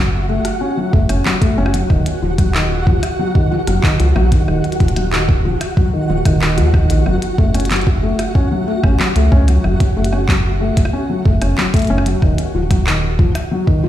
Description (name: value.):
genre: IDM.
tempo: 93 BPM.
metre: 4/4.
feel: straight.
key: F# melodic minor.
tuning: A4 = 440 Hz.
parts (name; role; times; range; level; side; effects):
felt-muted upright piano; arpeggios; 0.0-13.9 s; D#3 to C#4; -19 LUFS; left 2 dB; ping-pong delay.
rubbery square bass; bass; 0.0-13.3 s; D#1 to D#2; -16 LUFS; equal; tube saturation.
flickering grainy texture; texture; 0.0-13.9 s; F#4 to F#5; -24 LUFS; right 1 dB; built-in reverb, sidechain pumping.
glitchy drum kit; drums; 0.4-13.5 s; handclaps, hi-hat, rim click; -23 LUFS; equal; overdrive, studio ambience, ping-pong delay.
electronic kick drum; drums; 0.9-13.8 s; none; -13 LUFS; equal; overdrive, studio ambience.
room: light reverb.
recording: played on a big sound system in a bare room, stone room reverb.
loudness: -13 LUFS.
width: side -12 dB against mid.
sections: 0.0-13.9 A section.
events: none.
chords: 0.0 F#m; 1.9 D#madd9; 7.1 F#m; 12.2 D#madd9.